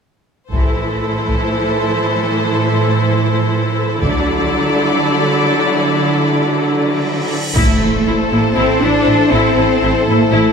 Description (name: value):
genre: cinematic, epic orchestral film score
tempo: 240 BPM (eighths)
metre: 7/8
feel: straight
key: A minor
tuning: A4 = 439 Hz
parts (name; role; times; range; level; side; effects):
- clear symphonic violin section; second line; 0.5-10.5 s; A4 to D5; -19 LUFS; left 1 dB; none
- rich symphonic viola section; accompaniment; 0.5-10.5 s; E3 to E4; -20 LUFS; left 1 dB; none
- rich symphonic cello section; bass; 0.5-10.5 s; A2 to D4; -17 LUFS; right 2 dB; none
- rich symphonic double bass section; bass; 0.5-1.0, 4.0-4.5, 7.5-10.4 s; A1 to D2; -20 LUFS; right 3 dB; none
- taiko ensemble; drums; 0.5-8.5 s; none; -20 LUFS; left 1 dB; none
- cymbal swell and impact; sound effects; 6.9-9.3 s; none; -25 LUFS; left 1 dB; none
- warm symphonic violin section; melody; 7.6-10.5 s; C5; -24 LUFS; left 7 dB; none
- dark French horn section; sustained chords; 7.6-10.5 s; E4 to C5; -19 LUFS; left 8 dB; none
room: moderate scoring stage reverb, RT60 1.9 s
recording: none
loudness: -13 LUFS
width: side -6 dB against mid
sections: 0.5-7.6 A section; 7.6-10.5 B section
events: cymbal swell 6.9-7.6; impact 7.6-9.3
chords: 0.5 Am; 4.0 Dadd9; 7.6 Am